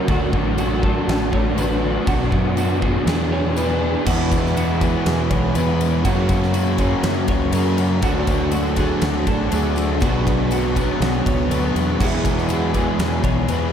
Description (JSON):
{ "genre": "rock, shoegaze and dream pop", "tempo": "121 BPM", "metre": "4/4", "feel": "straight", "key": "E mixolydian", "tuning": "A4 = 440 Hz", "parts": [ { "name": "twelve-string electric guitar", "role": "arpeggios", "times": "0.0-13.7 s", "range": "F#4 to C#5", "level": "-28 LUFS", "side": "right 2 dB", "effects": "lush chorus, tape echo" }, { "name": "crunchy overdriven guitar", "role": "riff", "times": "0.0-13.7 s", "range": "E2 to G#4", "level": "-23 LUFS", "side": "left 7 dB", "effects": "ensemble chorus" }, { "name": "overdriven semi-hollow guitar", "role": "riff", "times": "0.0-13.7 s", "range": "F#2 to G#4", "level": "-24 LUFS", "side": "right 7 dB", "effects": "reverse reverb" }, { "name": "growling fingered electric bass", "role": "bass", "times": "0.1-13.7 s", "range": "A1 to F#2", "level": "-23 LUFS", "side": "equal", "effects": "overdrive" }, { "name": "huge arena drum kit", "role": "drums", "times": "0.1-13.6 s", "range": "crash cymbal, kick drum, ride cymbal, snare drum", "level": "-24 LUFS", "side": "equal", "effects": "none" }, { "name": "tambourine", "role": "percussion", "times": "0.6-13.6 s", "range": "none", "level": "-43 LUFS", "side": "left 9 dB", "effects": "none" }, { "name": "cranked stack guitar", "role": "riff", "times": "4.1-13.7 s", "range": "E2 to D4", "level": "-26 LUFS", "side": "left 1 dB", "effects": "overdrive, lush chorus" } ], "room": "moderate huge ambient reverb, RT60 7.7 s", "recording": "dreamy mix soaked in reverb", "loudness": "-17 LUFS", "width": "side -8 dB against mid", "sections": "0.0-4.1 A section; 4.1-13.7 B section", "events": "none", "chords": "0.1 D; 2.1 Bm; 3.1 E7; 4.1 Eadd9; 6.0 F#; 8.0 D; 10.0 Bm; 12.0 Eadd9" }